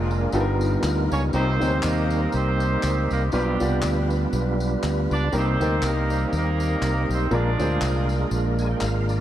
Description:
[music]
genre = uptempo gospel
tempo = 120 BPM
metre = 4/4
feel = swing 56% on 8ths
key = unclear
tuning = A4 = 440 Hz
[part]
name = clear horn section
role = melody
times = 0.0-8.3 s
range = G3 to D5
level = -29 LUFS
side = right 1 dB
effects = analog delay
[part]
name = clear baby grand piano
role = accompaniment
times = 0.0-8.2 s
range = G2 to D5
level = -29 LUFS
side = left 1 dB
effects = none
[part]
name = percussive tonewheel organ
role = sustained chords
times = 0.0-9.2 s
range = G3 to Ab5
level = -26 LUFS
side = right 2 dB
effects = slow rotary speaker, overdrive, chorus vibrato
[part]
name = fingered electric bass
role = bass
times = 0.0-9.2 s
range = F1 to Eb2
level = -24 LUFS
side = equal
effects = none
[part]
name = tambourine and handclaps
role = percussion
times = 0.1-9.2 s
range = none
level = -36 LUFS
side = left 3 dB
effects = none
[sound]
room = moderate huge ambient reverb, RT60 4.3 s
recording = dreamy mix soaked in reverb, cassette tape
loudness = -20 LUFS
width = side -12 dB against mid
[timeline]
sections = 0.0-9.2 A section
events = tonewheel organ fill 8.3-9.2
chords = 0.3 G7alt; 1.3 Cm7; 3.3 G7/B; 5.3 Cm7; 7.3 Bb7

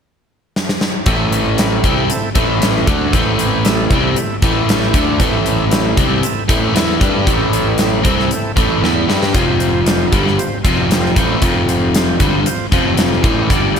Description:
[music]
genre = blues rock power trio and southern rock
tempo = 116 BPM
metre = 4/4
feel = straight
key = A minor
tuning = A4 = 440 Hz
[part]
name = huge arena drum kit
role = drums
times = 0.6-13.8 s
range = hi-hat, kick drum, snare drum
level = -16 LUFS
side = equal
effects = none
[part]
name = overdriven tonewheel organ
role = sustained chords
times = 1.1-13.8 s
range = F3 to D5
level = -24 LUFS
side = right 5 dB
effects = slow rotary speaker
[part]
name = biting overdriven guitar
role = riff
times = 1.1-13.8 s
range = F2 to G4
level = -16 LUFS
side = left 1 dB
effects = spring reverb
[part]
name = fuzz picked electric bass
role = bass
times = 1.1-13.8 s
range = F1 to G2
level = -20 LUFS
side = equal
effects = overdrive
[sound]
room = light reverb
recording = none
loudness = -12 LUFS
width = side -7 dB against mid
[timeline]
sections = 0.0-1.1 A section; 1.1-13.8 B section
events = drum fill 0.6-1.1, 8.8-9.3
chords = 0.0 N.C.; 1.1 Am; 9.3 F5

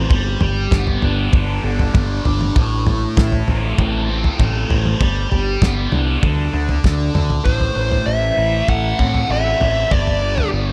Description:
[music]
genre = psychedelic rock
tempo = 98 BPM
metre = 4/4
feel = straight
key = A dorian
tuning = A4 = 440 Hz
[part]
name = thick fuzz guitar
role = riff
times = 0.0-10.7 s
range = G2 to A4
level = -24 LUFS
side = equal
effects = distortion, phaser, analog delay
[part]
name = overdriven picked electric bass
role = bass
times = 0.0-10.7 s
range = G1 to A2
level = -22 LUFS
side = equal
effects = none
[part]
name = cloth-damped thuddy drum kit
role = drums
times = 0.1-10.5 s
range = kick drum, snare drum, toms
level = -20 LUFS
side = equal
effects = none
[part]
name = fuzz lead guitar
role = melody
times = 7.4-10.5 s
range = C5 to F#5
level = -22 LUFS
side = equal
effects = distortion, analog delay
[sound]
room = light reverb, small room ambience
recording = echo-heavy mix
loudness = -18 LUFS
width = mono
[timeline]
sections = 0.0-7.5 A section; 7.5-10.7 B section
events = drum fill 6.8-7.5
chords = 0.1 Gadd9; 2.6 Am; 5.0 G; 6.2 N.C.; 7.5 Am; 9.9 G5

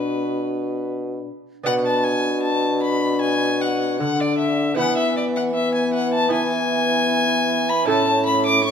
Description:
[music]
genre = classical, renaissance-style consort dance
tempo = 77 BPM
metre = 4/4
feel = straight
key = B dorian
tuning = A4 = 440 Hz
[part]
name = warm violin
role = melody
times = 0.0-8.7 s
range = B4 to D6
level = -22 LUFS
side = left 2 dB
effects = none
[part]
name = dark trombone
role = accompaniment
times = 0.0-8.7 s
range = B3 to D4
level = -24 LUFS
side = left 6 dB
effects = none
[part]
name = lute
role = accompaniment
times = 0.0-8.7 s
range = A2 to B4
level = -28 LUFS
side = right 4 dB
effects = none
[part]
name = warm bassoon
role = bass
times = 0.0-8.7 s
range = A2 to E3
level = -23 LUFS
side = right 3 dB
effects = none
[sound]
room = moderate recital hall reverb, RT60 1.6 s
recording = none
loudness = -18 LUFS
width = side -7 dB against mid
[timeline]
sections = 0.0-1.7 A section; 1.7-8.7 A section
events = none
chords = 0.0 Bm; 4.8 E; 7.9 A

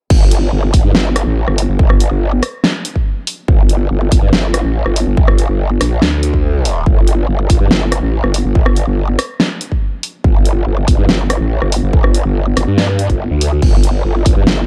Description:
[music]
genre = heavy wobble dubstep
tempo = 142 BPM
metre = 4/4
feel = half-time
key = unclear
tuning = A4 = 440 Hz
[part]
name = growl bass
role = bass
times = 0.1-14.7 s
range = G1 to G2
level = -16 LUFS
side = equal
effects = chorus, overdrive
[part]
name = big-room dance drum kit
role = drums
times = 0.1-14.6 s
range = crash cymbal, hi-hat, rim click, snare drum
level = -19 LUFS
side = equal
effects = studio reverb
[part]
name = electronic kick drum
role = drums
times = 0.1-14.3 s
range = none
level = -14 LUFS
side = equal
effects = studio reverb
[sound]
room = little or no reverb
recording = dark, warm production, high-pass filter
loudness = -14 LUFS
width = mono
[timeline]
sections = 0.1-14.7 A section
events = drop 0.1-14.7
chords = none

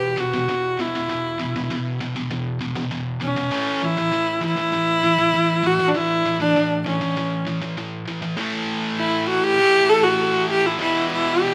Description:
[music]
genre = metal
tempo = 99 BPM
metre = 4/4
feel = straight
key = unclear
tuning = A4 = 442 Hz
[part]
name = clear viola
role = melody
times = 0.0-11.5 s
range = C#4 to A4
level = -21 LUFS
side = equal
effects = none
[part]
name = heavy high-gain guitar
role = riff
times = 0.0-11.5 s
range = E2 to A3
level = -27 LUFS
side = equal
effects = distortion
[sound]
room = light reverb, studio ambience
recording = rough home demo mix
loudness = -21 LUFS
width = mono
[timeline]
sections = 0.0-8.4 A section; 8.4-11.5 B section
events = none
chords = 0.0 E5; 3.5 A5; 10.8 E5

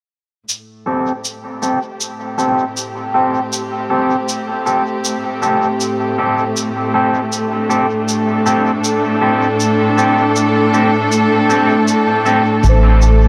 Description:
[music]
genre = ambient dub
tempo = 79 BPM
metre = 4/4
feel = straight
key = A minor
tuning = A4 = 436 Hz
[part]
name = muted studio string section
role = sustained chords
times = 0.5-13.3 s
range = A2 to A4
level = -18 LUFS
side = equal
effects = none
[part]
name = cabasa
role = drums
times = 0.5-13.2 s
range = none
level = -25 LUFS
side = equal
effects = none
[part]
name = electric guitar at the edge of break-up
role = stabs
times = 0.9-12.4 s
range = C4 to A4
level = -20 LUFS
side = equal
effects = low-pass filter, dub echo
[part]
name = round analog bass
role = bass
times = 12.6-13.3 s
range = A1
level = -11 LUFS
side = equal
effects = none
[part]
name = electronic kick drum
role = drums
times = 12.6-12.8 s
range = none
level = -20 LUFS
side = equal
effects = none
[part]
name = kalimba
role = arpeggios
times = 12.7-13.3 s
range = C5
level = -24 LUFS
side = equal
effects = vintage 12-bit sampler grit, low-pass filter
[sound]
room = moderate echo chamber reverb, RT60 2.3 s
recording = none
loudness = -16 LUFS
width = mono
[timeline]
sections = 0.5-12.6 A section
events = fade-in on string section 0.5-12.6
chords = 0.5 Am7; 12.6 Am

